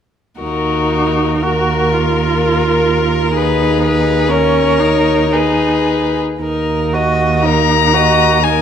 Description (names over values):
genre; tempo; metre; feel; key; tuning
classical, slow romantic movement for string quartet; 53-65 BPM; 3/4; rubato; Eb minor; A4 = 440 Hz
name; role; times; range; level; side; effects
rich violin; melody; 0.4-8.6 s; Ab4 to Bb5; -17 LUFS; left 9 dB; none
rich violin; second line; 0.4-8.6 s; Gb4 to Eb5; -18 LUFS; equal; none
rich viola; accompaniment; 0.4-8.6 s; Db4 to Gb4; -17 LUFS; right 1 dB; none
rich cello; bass; 0.4-8.6 s; Eb2; -17 LUFS; right 4 dB; none
room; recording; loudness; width
moderate recital hall reverb, RT60 1.3 s; minimal, uncompressed stereo recording; -12 LUFS; side -8 dB against mid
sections
0.4-6.4 A section; 6.4-8.6 B section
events
none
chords
0.4 Ebm; 3.4 Abm/Eb; 6.4 Ebm